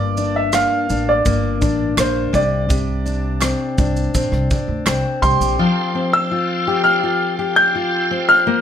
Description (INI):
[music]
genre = acoustic pop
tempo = 83 BPM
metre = 4/4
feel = straight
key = F major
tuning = A4 = 442 Hz
[part]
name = clear upright piano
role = melody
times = 0.0-8.6 s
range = C5 to G6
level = -18 LUFS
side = right 1 dB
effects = none
[part]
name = fingerpicked steel-string acoustic guitar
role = accompaniment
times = 0.0-8.6 s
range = G2 to G4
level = -20 LUFS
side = left 3 dB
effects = none
[part]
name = upright bass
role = bass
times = 0.0-5.6 s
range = G1 to D2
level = -22 LUFS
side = equal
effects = none
[part]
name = natural country drum kit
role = drums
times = 0.2-5.6 s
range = kick drum, rim click, shaker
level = -22 LUFS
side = right 1 dB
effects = none
[part]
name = group handclap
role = percussion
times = 0.5-5.0 s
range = none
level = -28 LUFS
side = right 5 dB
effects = none
[part]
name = bright tonewheel organ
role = sustained chords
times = 5.6-8.6 s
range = A4 to C6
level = -26 LUFS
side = right 2 dB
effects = chorus vibrato, slow rotary speaker
[sound]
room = light reverb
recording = none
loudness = -15 LUFS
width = side -9 dB against mid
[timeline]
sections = 0.0-5.6 A section; 5.6-8.6 B section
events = none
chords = 0.0 Gm; 2.3 Csus2; 5.6 Fadd9